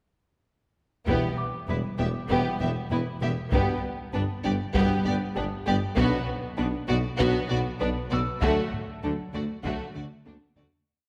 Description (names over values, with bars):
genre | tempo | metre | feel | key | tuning
cinematic, hybrid orchestral and electronic film score | 98 BPM | 4/4 | straight | E minor | A4 = 440 Hz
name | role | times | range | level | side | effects
rich symphonic violin section | melody | 1.1-10.6 s | F#4 to E5 | -37 LUFS | equal | none
rich studio violin section | second line | 1.1-10.7 s | A3 to G4 | -36 LUFS | equal | none
rich symphonic viola section | accompaniment | 1.1-10.6 s | A3 to B3 | -36 LUFS | equal | none
dark French horn section | sustained chords | 1.1-9.9 s | A3 to E4 | -40 LUFS | equal | none
warm trombone section | sustained chords | 1.1-9.9 s | B2 to G3 | -39 LUFS | equal | none
glassy wavetable pluck | arpeggios | 1.1-10.7 s | D3 to B4 | -38 LUFS | equal | none
clear symphonic double bass section | bass | 1.1-10.7 s | E1 to D2 | -35 LUFS | equal | none
rich symphonic cello section | bass | 1.1-10.6 s | E2 to D3 | -35 LUFS | equal | none
warm tuba | bass | 1.1-10.7 s | E1 to D2 | -37 LUFS | equal | none
taiko ensemble | drums | 1.1-10.8 s | none | -35 LUFS | equal | none
clear grand piano | texture | 1.4-3.5, 8.1-10.9 s | D6 to E6 | -42 LUFS | equal | none
room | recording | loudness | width
wet concert hall reverb, RT60 2.3 s | none | -27 LUFS | mono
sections
1.1-10.9 theme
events
fade-out 8.4-10.9; drum fill 10.0-10.9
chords
1.1 Em; 3.5 G; 6.0 Bm; 8.4 D